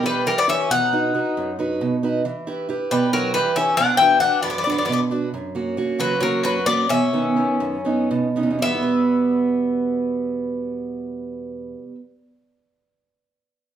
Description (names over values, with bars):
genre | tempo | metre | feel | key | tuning
greek folk, Greek bouzouki band | 222-274 BPM (eighths) | 7/8 | straight | E dorian sharp4 | A4 = 440 Hz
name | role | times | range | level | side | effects
Greek bouzouki | melody | 0.0-11.9 s | A#4 to G5 | -20 LUFS | left 3 dB | none
Greek bouzouki | second line | 0.0-12.0 s | F#3 to E4 | -26 LUFS | left 3 dB | none
picked acoustic archtop guitar | accompaniment | 0.0-12.2 s | E2 to B4 | -22 LUFS | right 3 dB | none
room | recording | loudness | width
moderate large studio reverb, RT60 0.9 s | band playing live in one room | -18 LUFS | side -10 dB against mid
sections
0.0-8.6 A section; 8.6-12.4 B section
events
slowing down 5.3-8.6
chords
0.0 Em; 0.7 B; 2.2 Em; 3.8 Bm; 5.3 F#; 6.9 Badd9; 8.6 Em